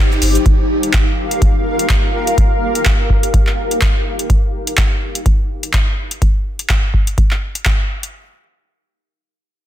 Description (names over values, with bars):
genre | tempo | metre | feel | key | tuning
acid house | 125 BPM | 4/4 | swing 56% on 16ths | C minor | A4 = 440 Hz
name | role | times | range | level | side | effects
granular cloud pad | texture | 0.0-4.3 s | Eb4 to G5 | -19 LUFS | left 1 dB | built-in reverb, sidechain pumping
booming analog drum machine | drums | 0.1-8.1 s | handclaps, hi-hat, shaker | -20 LUFS | equal | none
electronic kick drum | drums | 0.5-7.8 s | none | -14 LUFS | equal | none
room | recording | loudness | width
digital ambience | dense, heavily limited modern master | -13 LUFS | side -12 dB against mid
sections
0.0-8.1 A section; 8.1-9.7 B section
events
none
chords
0.0 Cm (rootless); 8.1 N.C.